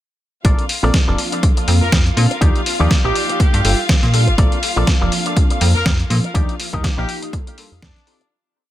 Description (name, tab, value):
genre	filtered disco house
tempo	122 BPM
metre	4/4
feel	swing 56% on 16ths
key	Bb major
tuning	A4 = 440 Hz
part	funky polysynth comp	accompaniment	0.4-8.2 s	F3 to A5	-24 LUFS	right 1 dB	chorus, phaser, sidechain pumping, tape echo
part	dark studio violin section	sustained chords	0.4-8.3 s	F4 to F5	-26 LUFS	left 1 dB	vintage 12-bit sampler grit, sidechain pumping
part	electric guitar with an envelope filter	riff	0.4-8.2 s	Eb4 to F5	-26 LUFS	left 2 dB	sidechain pumping, tape echo
part	slap-like FM bass	bass	0.4-7.9 s	F1 to Bb2	-16 LUFS	equal	sidechain pumping
part	dusty soul sampler-style drum kit	drums	0.4-8.3 s	hi-hat, snare drum	-21 LUFS	equal	sidechain pumping on hats
part	electronic kick drum	drums	0.4-7.9 s	none	-16 LUFS	equal	overdrive
part	warm horn section	melody	1.8-8.3 s	D4 to Bb4	-25 LUFS	left 2 dB	vintage 12-bit sampler grit, sidechain pumping, tape echo
room	digital ambience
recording	echo-heavy mix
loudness	-14 LUFS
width	side -13 dB against mid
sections	0.4-8.3 drop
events	drop 0.4-8.3; fade-out 5.7-8.3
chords	0.4 Bbmaj7; 2.4 Ebmaj7; 3.4 Gm7; 4.4 Bbmaj7; 6.3 Ebmaj7; 7.3 Gm7; 7.8 F7